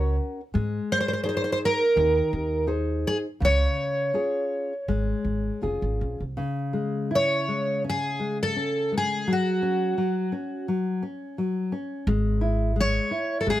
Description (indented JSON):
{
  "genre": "fado-style ballad",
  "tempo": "84 BPM",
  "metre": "4/4",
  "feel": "rubato",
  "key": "Db major, C# minor from 6.4 s",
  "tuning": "A4 = 443 Hz",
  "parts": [
    { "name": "fingerpicked twelve-string acoustic guitar", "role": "melody", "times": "0.0-13.6 s", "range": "F#4 to Db5", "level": "-24 LUFS", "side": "right 1 dB", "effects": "none" },
    { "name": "nylon-string guitar", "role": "accompaniment", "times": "0.0-13.6 s", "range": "Db3 to C5", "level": "-28 LUFS", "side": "left 2 dB", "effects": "none" },
    { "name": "upright bass", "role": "bass", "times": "0.0-6.4, 12.1-13.6 s", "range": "F1 to Ab2", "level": "-26 LUFS", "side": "right 1 dB", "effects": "none" }
  ],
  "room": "light reverb",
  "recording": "none",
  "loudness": "-23 LUFS",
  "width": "side -14 dB against mid",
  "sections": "0.0-6.4 A section; 6.4-13.6 B section",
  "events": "none",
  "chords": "0.0 Gb; 0.5 Ab; 3.4 Db; 6.4 C#m; 9.3 F#5; 12.1 C#m/G#",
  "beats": "| 0.54 1.25 1.96 2.68 | 3.40 4.13 4.87 5.61 | 6.37 7.11 7.84 8.56 | 9.28 9.98 10.68 11.38 | 12.07 12.76 13.46"
}